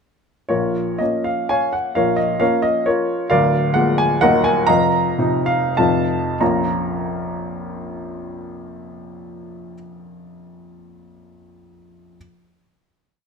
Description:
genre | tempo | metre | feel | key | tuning
classical, romantic triple-time dance for piano with dotted rhythms | 88-142 BPM | 3/4 | rubato | Bb minor | A4 = 440 Hz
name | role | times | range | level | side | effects
warm baby grand piano | solo | 0.5-12.2 s | D1 to Bb5 | -17 LUFS | equal | none
room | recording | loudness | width
light reverb | close, detailed microphones | -16 LUFS | side -6 dB against mid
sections
0.5-6.4 A section; 6.4-10.0 final chord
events
slowing down 2.6-6.4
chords
0.5 Bbm; 3.3 Bb7/D; 4.2 Ebm; 4.7 F7sus4; 6.4 Bbm

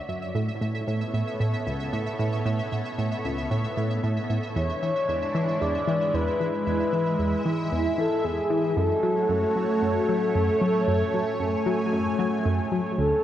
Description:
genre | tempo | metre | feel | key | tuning
ambient, sequencer-driven space music | 114 BPM | 4/4 | straight | unclear | A4 = 437 Hz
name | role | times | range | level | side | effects
lush unison pad | sustained chords | 0.0-13.2 s | G#3 to G#5 | -29 LUFS | right 1 dB | chorus, phaser
pulsing gated texture | texture | 0.0-13.0 s | E5 | -38 LUFS | right 2 dB | chorus, built-in reverb
tight sequenced synth | riff | 0.1-13.1 s | C#2 to F#3 | -27 LUFS | equal | chorus, tape echo
breathy flute-like synth lead | melody | 4.6-13.2 s | G#4 to D5 | -26 LUFS | left 1 dB | analog chorus, tape echo
room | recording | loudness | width
wet plate reverb, RT60 3.1 s | worn, warbling old tape, cassette tape, warbly pitch drift | -23 LUFS | side -11 dB against mid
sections
0.0-13.0 A section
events
fade-in on analog synth pad 0.0-13.0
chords
0.3 Aadd9; 4.6 E7; 8.8 F#m

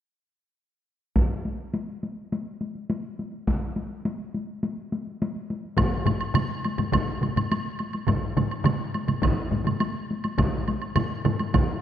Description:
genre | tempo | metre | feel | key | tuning
japanese traditional, taiko drum ensemble | 104 BPM | 4/4 | straight | none | none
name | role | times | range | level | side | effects
solo taiko drums | percussion | 1.2-11.7 s | none | -29 LUFS | left 2 dB | none
taiko ensemble | percussion | 1.2-11.7 s | none | -27 LUFS | equal | none
taiko ensemble | percussion | 5.8-11.7 s | none | -29 LUFS | left 3 dB | none
taiko ensemble | percussion | 5.8-11.7 s | none | -29 LUFS | right 5 dB | none
woodblock | percussion | 5.8-11.7 s | none | -32 LUFS | right 3 dB | none
room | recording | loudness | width
moderate scoring stage reverb, RT60 1.9 s | none | -24 LUFS | side -10 dB against mid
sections
1.2-5.8 A section; 5.8-11.8 B section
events
none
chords
none

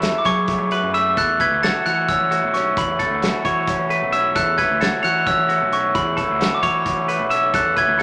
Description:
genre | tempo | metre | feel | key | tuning
math rock and midwest emo | 264 BPM (eighths) | 7/8 | straight | unclear | A4 = 440 Hz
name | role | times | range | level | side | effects
glockenspiel with hard plastic mallets | melody | 0.0-8.0 s | B5 to A6 | -22 LUFS | equal | none
electric guitar through a small old amp | accompaniment | 0.0-8.0 s | F#2 to G#4 | -27 LUFS | equal | none
clean electric guitar | arpeggios | 0.0-8.0 s | F#4 to E5 | -27 LUFS | equal | none
fuzz picked electric bass | bass | 0.0-8.0 s | B1 to F#3 | -31 LUFS | equal | overdrive
loose indie drum kit | drums | 0.0-8.0 s | hi-hat, kick drum, snare drum | -29 LUFS | equal | none
room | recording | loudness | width
moderate large studio reverb, RT60 1.2 s | none | -19 LUFS | mono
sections
0.0-8.0 A section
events
none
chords
0.0 F#m11; 1.2 E13sus4

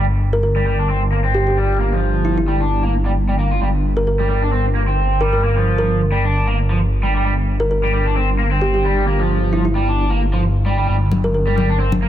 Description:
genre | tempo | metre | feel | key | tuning
breakbeat, breaks | 132 BPM | 4/4 | swing 55% on 16ths | unclear | A4 = 440 Hz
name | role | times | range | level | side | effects
cranked stack guitar | riff | 0.0-12.1 s | F3 to F4 | -21 LUFS | right 1 dB | overdrive, phaser, low-pass filter, digital delay
phased detuned saw bass | bass | 0.0-12.1 s | G1 | -17 LUFS | equal | phaser
kalimba | melody | 0.3-11.4 s | E4 to Bb4 | -23 LUFS | equal | AM radio sound, digital delay
congas | percussion | 11.1-12.0 s | none | -21 LUFS | left 2 dB | none
room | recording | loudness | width
digital ambience | none | -15 LUFS | side -11 dB against mid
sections
0.0-12.1 A section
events
none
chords
0.0 G7(no3)

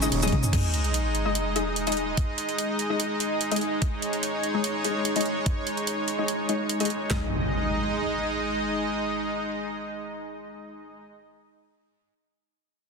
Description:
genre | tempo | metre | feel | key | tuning
heavy wobble dubstep | 146 BPM | 4/4 | half-time | unclear | A4 = 440 Hz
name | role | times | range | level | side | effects
dark grand piano | melody | 0.0-0.5 s | C#3 to C#4 | -34 LUFS | right 3 dB | ping-pong delay
supersaw pad | sustained chords | 0.0-11.0 s | G#3 to D#5 | -28 LUFS | right 1 dB | vintage 12-bit sampler grit, sidechain pumping, low-pass filter
orchestra-hit-like synth stab | stabs | 0.0-11.0 s | G#3 to D#5 | -31 LUFS | left 5 dB | built-in reverb, ping-pong delay
dubstep drum kit | drums | 0.0-7.0 s | crash cymbal, hi-hat, shaker, toms | -29 LUFS | right 1 dB | none
dubstep drum kit | drums | 0.3-7.2 s | handclaps, kick drum, snare drum | -27 LUFS | equal | none
sub drop and impact | sound effects | 0.5-2.2, 7.1-11.1 s | none | -30 LUFS | equal | none
room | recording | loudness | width
moderate lush hall reverb, RT60 2.0 s | dense, heavily limited modern master | -24 LUFS | side -4 dB against mid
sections
0.5-7.1 A section; 7.1-10.4 B section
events
drum fill 0.2-0.5; impact 0.5-2.2; filter sweep on synth stab 0.5-7.1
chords
0.0 G#5

